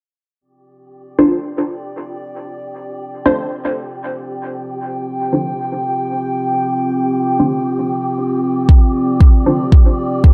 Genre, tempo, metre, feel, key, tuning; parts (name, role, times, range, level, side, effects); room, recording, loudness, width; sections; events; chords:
dub techno; 116 BPM; 4/4; swing 55% on 16ths; D minor; A4 = 440 Hz
dark analog pad; sustained chords; 1.8-10.3 s; C4 to G5; -23 LUFS; equal; chorus, sidechain pumping
wind-like tuned noise texture; texture; 1.0-10.3 s; G4; -29 LUFS; equal; built-in reverb, sidechain pumping
filtered dub chord stab; stabs; 1.2-9.7 s; D4 to C5; -20 LUFS; equal; phaser, sidechain pumping, dub echo
electronic kick drum; drums; 8.7-10.3 s; -10 LUFS; equal
light reverb; -16 LUFS; mono
0.4-10.3 A section
filter sweep on synth stab 0.4-10.3; filter sweep on analog synth pad 0.4-10.3
0.4 Dm7